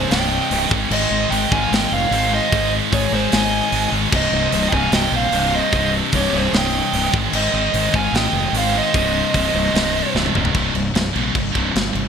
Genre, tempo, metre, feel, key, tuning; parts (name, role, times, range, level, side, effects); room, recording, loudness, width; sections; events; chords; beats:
heavy metal; 150 BPM; 4/4; straight; C minor; A4 = 441 Hz
bluesy overdriven lead guitar; melody; 0.0-10.1 s; C5 to Ab5; -22 LUFS; right 1 dB; distortion
high-gain lead guitar; second line; 0.0-10.1 s; G4 to F5; -28 LUFS; right 3 dB; distortion
heavy high-gain guitar; riff; 0.0-12.1 s; C2 to Ab3; -22 LUFS; right 13 dB; distortion
sludgy distorted guitar; riff; 0.0-12.1 s; C2 to Ab3; -24 LUFS; left 11 dB; overdrive
fuzz fingered electric bass; bass; 0.0-12.1 s; C1 to Bb1; -23 LUFS; equal; overdrive
tight metal drum kit; drums; 0.1-12.0 s; crash cymbal, hi-hat, kick drum, snare drum, toms; -23 LUFS; equal; gated reverb
moderate plate reverb, RT60 2.1 s; bright 1980s-style digital production; -16 LUFS; side -7 dB against mid
0.0-10.5 A section; 10.5-12.1 B section
half time 0.0-10.5; drum fill 10.1-10.5
0.0 Cm; 0.7 Ab; 4.1 Cm; 7.1 Ab; 8.9 Cm; 10.5 C5
0.11 0.52 | 0.92 1.32 1.72 2.12 | 2.52 2.93 3.33 3.73 | 4.13 4.53 4.93 5.33 | 5.74 6.14 6.54 6.94 | 7.34 7.74 8.14 8.54 | 8.94 9.34 9.74 10.14 | 10.54 10.94 11.34 11.74